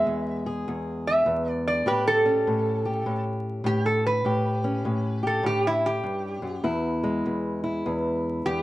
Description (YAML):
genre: acoustic country blues, solo or duo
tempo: 100 BPM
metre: 4/4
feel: swing 63% on 8ths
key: unclear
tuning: A4 = 440 Hz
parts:
  - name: metal-body resonator slide guitar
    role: melody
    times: 0.0-8.6 s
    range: E4 to E5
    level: -24 LUFS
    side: right 1 dB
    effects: plate reverb
  - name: fingerpicked old ladder-braced acoustic guitar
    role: accompaniment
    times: 0.0-8.6 s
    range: E2 to G#4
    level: -26 LUFS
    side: left 1 dB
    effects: none
room: moderate studio reverb, RT60 0.6 s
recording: dark, warm production, vinyl crackle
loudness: -23 LUFS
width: side -16 dB against mid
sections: 0.0-8.6 A section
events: none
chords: 0.0 E; 1.9 A7; 6.7 E